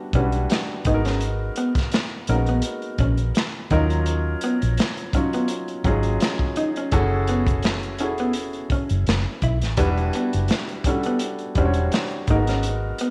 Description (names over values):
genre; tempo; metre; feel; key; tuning
R&B, neo-soul; 84 BPM; 4/4; swing 54% on 16ths; unclear; A4 = 440 Hz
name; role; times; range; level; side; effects
warm grand piano; accompaniment; 0.0-13.1 s; F#3 to C#5; -29 LUFS; equal; none
vintage muted fingered electric bass; bass; 0.1-12.9 s; E1 to D#2; -25 LUFS; equal; tube saturation
crunchy breakbeat drum kit; drums; 0.1-13.1 s; hi-hat, kick drum, snare drum; -27 LUFS; equal; none
electric guitar through a small old amp; second line; 0.2-13.1 s; B3 to E4; -30 LUFS; equal; none
room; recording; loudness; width
moderate echo chamber reverb, RT60 1.8 s, small room ambience; none; -23 LUFS; mono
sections
0.0-13.1 A section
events
none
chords
0.0 Em9; 0.8 G#m9; 3.7 D#m9; 6.9 F#m9; 9.8 Em9; 12.3 G#m9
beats
0.49 | 1.21 1.92 2.63 3.35 | 4.06 4.78 5.49 6.21 | 6.92 7.63 8.35 9.06 | 9.78 10.49 11.21 11.92 | 12.63